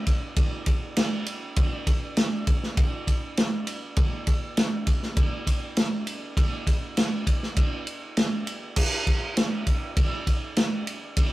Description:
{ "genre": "rock", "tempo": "100 BPM", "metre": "4/4", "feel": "straight", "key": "none", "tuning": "none", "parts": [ { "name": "vintage drum kit", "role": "drums", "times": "0.1-11.3 s", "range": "crash cymbal, kick drum, ride cymbal, snare drum", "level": "-23 LUFS", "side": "equal", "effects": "none" } ], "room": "little or no reverb", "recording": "rough rehearsal-room recording, tube saturation", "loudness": "-23 LUFS", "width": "side -17 dB against mid", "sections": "0.0-11.3 A section", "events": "none", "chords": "none" }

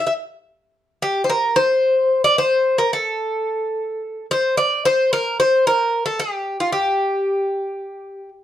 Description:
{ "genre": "greek folk", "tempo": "222 BPM (eighths)", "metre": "7/8", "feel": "straight", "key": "unclear", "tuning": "A4 = 440 Hz", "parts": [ { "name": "Greek bouzouki", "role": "solo", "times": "0.0-8.3 s", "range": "F4 to E5", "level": "-17 LUFS", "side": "left 1 dB", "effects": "none" } ], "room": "wet studio reverb, RT60 0.6 s", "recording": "dark, warm production", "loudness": "-17 LUFS", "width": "side -11 dB against mid", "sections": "0.0-4.8 A section; 4.8-8.4 B section", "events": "speeding up 0.0-8.4", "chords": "none" }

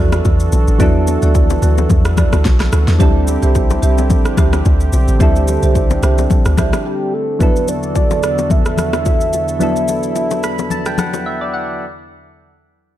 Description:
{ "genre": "amapiano", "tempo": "109 BPM", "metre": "4/4", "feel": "swing 55% on 16ths", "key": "E minor", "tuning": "A4 = 438 Hz", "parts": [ { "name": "soft electric-piano-like synth keys", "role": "accompaniment", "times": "0.0-11.8 s", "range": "F#3 to B5", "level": "-21 LUFS", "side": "left 1 dB", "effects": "chorus" }, { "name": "warm analog pad", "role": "sustained chords", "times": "0.0-11.8 s", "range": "E2 to A4", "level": "-23 LUFS", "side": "right 2 dB", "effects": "chorus, sidechain pumping" }, { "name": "marimba with medium mallets", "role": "stabs", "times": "0.0-6.7 s", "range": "F#4 to E5", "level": "-24 LUFS", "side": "right 7 dB", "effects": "tape echo" }, { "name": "deep log drum bass", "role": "bass", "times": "0.0-6.7 s", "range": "A1 to E2", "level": "-14 LUFS", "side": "equal", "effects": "none" }, { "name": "deep house drum kit", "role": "drums", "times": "0.1-11.3 s", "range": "kick drum, rim click, shaker, snare drum", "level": "-16 LUFS", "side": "equal", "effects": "none" }, { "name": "bongos and congas", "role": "percussion", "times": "0.1-11.2 s", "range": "none", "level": "-23 LUFS", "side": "left 7 dB", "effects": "none" }, { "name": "warm velvety synth lead", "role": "melody", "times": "6.9-11.3 s", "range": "G4 to E5", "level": "-20 LUFS", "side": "right 1 dB", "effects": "chorus, tremolo, tape echo" } ], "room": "light reverb", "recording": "dark, warm production", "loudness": "-12 LUFS", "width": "side -13 dB against mid", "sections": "0.0-7.4 A section; 7.4-11.8 B section", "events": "break 6.9-7.4, 11.3-11.8; synth keys fill 10.2-11.8", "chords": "0.0 E9sus4; 3.0 D9sus4; 7.4 E9sus4" }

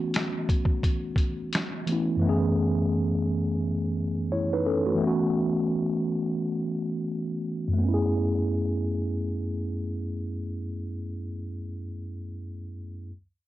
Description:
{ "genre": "lo-fi hip hop", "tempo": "86 BPM", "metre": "4/4", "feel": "swing 56% on 16ths", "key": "F# minor", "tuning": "A4 = 439 Hz", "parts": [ { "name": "mellow tine electric piano", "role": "accompaniment", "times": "0.0-13.1 s", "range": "F#2 to C#5", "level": "-26 LUFS", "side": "equal", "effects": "medium stereo tremolo, cassette tape, low-pass filter" }, { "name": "lo-fi sampler-style drum kit", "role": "drums", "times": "0.1-2.1 s", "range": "finger snaps, hi-hat, kick drum, snare drum", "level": "-26 LUFS", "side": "equal", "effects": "none" } ], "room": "light reverb", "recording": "cassette tape", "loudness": "-25 LUFS", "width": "side -15 dB against mid", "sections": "0.0-7.8 A section; 7.8-10.6 B section", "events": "filter sweep on tine electric piano 0.0-7.8", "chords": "0.0 B9sus4; 2.2 F#m11; 5.0 B9sus4; 7.8 F#m11" }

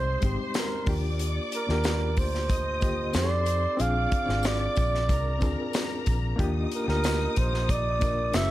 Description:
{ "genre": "lush 1970s-style soul", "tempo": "92 BPM", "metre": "4/4", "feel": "straight", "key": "unclear", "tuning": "A4 = 440 Hz", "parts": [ { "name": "breathy flugelhorn", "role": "melody", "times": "0.0-8.5 s", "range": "Bb4 to F5", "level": "-30 LUFS", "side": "right 2 dB", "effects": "tape echo" }, { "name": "warm studio string section", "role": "second line", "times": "0.0-8.5 s", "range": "Eb4 to Eb6", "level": "-36 LUFS", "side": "left 1 dB", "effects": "none" }, { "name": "reed electric piano", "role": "accompaniment", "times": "0.0-8.5 s", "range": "D3 to Bb4", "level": "-33 LUFS", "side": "left 3 dB", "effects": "fast tremolo" }, { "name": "vintage muted fingered electric bass", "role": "bass", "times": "0.0-8.5 s", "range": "Gb1 to F2", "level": "-28 LUFS", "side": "equal", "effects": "none" }, { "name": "modern studio drum kit", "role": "drums", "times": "0.2-8.5 s", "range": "hi-hat, kick drum, snare drum", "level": "-29 LUFS", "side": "equal", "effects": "none" }, { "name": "tambourine", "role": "percussion", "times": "0.2-8.5 s", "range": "none", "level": "-46 LUFS", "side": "left 7 dB", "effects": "none" } ], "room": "studio ambience", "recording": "none", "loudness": "-24 LUFS", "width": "side -15 dB against mid", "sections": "0.0-8.5 A section", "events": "none", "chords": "0.0 Fm7 (rootless); 0.9 Ebmaj7; 3.1 F7; 3.8 Bb7; 6.4 Ebmaj7" }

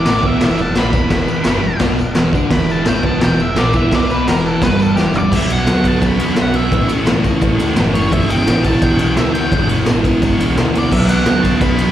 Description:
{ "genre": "garage rock duo or trio", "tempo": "172 BPM", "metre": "4/4", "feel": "straight", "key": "E minor, E dorian from 5.3 s", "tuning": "A4 = 440 Hz", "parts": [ { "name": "octave-fuzz lead guitar", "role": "melody", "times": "0.0-11.9 s", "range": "G4 to B5", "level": "-22 LUFS", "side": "equal", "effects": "distortion, slapback echo" }, { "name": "thick fuzz guitar", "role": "riff", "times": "0.0-11.9 s", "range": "E2 to D4", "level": "-16 LUFS", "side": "right 1 dB", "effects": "distortion, slapback echo" }, { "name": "growling picked electric bass", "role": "bass", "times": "0.0-11.9 s", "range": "E1 to E2", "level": "-21 LUFS", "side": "equal", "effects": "overdrive" }, { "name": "raw garage drum kit", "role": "drums", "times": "0.1-11.9 s", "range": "crash cymbal, kick drum, ride cymbal, snare drum, toms", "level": "-17 LUFS", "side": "equal", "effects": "none" }, { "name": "tambourine", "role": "percussion", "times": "0.1-11.9 s", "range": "none", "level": "-39 LUFS", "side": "left 4 dB", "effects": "none" } ], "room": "little or no reverb", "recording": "live gig heard through the venue's PA, recital hall reverb", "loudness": "-12 LUFS", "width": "side -11 dB against mid", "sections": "0.0-5.3 A section; 5.3-11.9 B section", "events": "lead electric guitar solo 0.0-5.3; drum fill 5.0-5.3", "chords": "0.0 Em; 5.3 Bm; 6.7 A; 8.1 Em/G; 10.9 Bm" }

